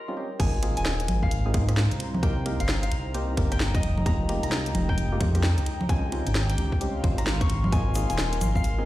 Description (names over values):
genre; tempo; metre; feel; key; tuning
UK garage, two-step garage; 131 BPM; 4/4; swing 63% on 16ths; unclear; A4 = 440 Hz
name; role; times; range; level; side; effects
Celtic harp; melody; 0.0-8.9 s; G4 to Db6; -34 LUFS; left 3 dB; digital delay
percussive organ stab; stabs; 0.1-8.8 s; G3 to C5; -34 LUFS; equal; chorus, digital delay
dark detuned saw bass; bass; 0.4-8.8 s; Eb1 to Ab2; -26 LUFS; equal; none
electronic kick drum; drums; 0.4-8.6 s; none; -25 LUFS; equal; overdrive, small room ambience
garage drum kit; drums; 0.4-8.8 s; congas, crash cymbal, hi-hat, rim click, snare drum; -30 LUFS; equal; overdrive, small room ambience
airy breathy pad; texture; 1.0-8.9 s; Ab3 to C6; -37 LUFS; equal; chorus, sidechain pumping
tube shaker; percussion; 7.7-8.8 s; none; -41 LUFS; left 3 dB; none
room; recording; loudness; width
little or no reverb; played on a big sound system in a bare room, large studio reverb; -23 LUFS; side -15 dB against mid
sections
0.4-8.9 A section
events
break 0.0-0.4; drop 0.4-8.9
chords
0.4 Ab69; 2.0 Cm7; 3.8 Fm11; 5.7 Dbmaj9#11; 7.7 Ab69